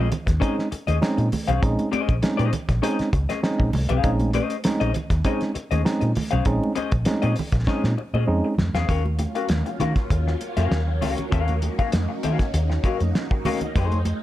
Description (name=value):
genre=funk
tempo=99 BPM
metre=4/4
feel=straight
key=unclear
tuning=A4 = 440 Hz
part: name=electric guitar at the edge of break-up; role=accompaniment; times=0.0-14.1 s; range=A3 to F5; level=-28 LUFS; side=left 6 dB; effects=lush chorus
part: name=tine electric piano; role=stabs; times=0.0-8.5 s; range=Ab3 to Eb4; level=-26 LUFS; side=right 2 dB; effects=none
part: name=vintage muted fingered electric bass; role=bass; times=0.0-14.1 s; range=Bb1 to Eb3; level=-23 LUFS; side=equal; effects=none
part: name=cloth-damped thuddy drum kit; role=drums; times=0.1-14.2 s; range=hi-hat, kick drum, snare drum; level=-26 LUFS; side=equal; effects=none
part: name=congas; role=percussion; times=0.1-14.2 s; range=none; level=-31 LUFS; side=right 3 dB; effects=none
part: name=phased string machine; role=sustained chords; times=9.1-14.2 s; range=F3 to F4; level=-32 LUFS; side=equal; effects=ensemble chorus, phaser
room=light reverb, small room ambience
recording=none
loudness=-20 LUFS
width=side -14 dB against mid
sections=0.0-8.9 A section; 8.9-14.2 B section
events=drum fill 7.7-8.9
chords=0.0 Bbm11; 8.9 Ebm9